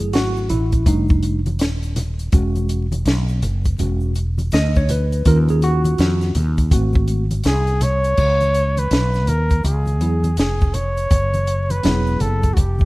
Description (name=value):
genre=hip hop, jazz-hop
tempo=82 BPM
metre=4/4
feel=swing 62% on 16ths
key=unclear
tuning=A4 = 440 Hz
part: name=tine electric piano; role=accompaniment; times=0.0-12.6 s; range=D#3 to D#5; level=-22 LUFS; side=right 1 dB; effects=medium stereo tremolo
part: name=mellow fretless electric bass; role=bass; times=0.0-12.9 s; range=Eb1 to E#2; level=-19 LUFS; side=equal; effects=none
part: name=compact cocktail drum kit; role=drums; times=0.0-12.9 s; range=crash cymbal, hi-hat, kick drum, snare drum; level=-19 LUFS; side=equal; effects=none
part: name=tube shaker and congas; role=percussion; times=0.1-12.9 s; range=none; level=-29 LUFS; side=left 1 dB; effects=none
part: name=warm flugelhorn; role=melody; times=7.5-12.9 s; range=F#4 to C#5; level=-21 LUFS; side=equal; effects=none
room=small room ambience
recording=rough home demo mix, vinyl crackle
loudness=-16 LUFS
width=side -20 dB against mid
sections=0.0-8.2 A section; 8.2-12.9 B section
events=tine electric piano solo 0.0-8.2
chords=0.0 F#m9; 0.9 F13; 2.3 E69; 5.3 D#m9; 6.7 G#7b9; 8.2 C#m7; 11.1 F#sus2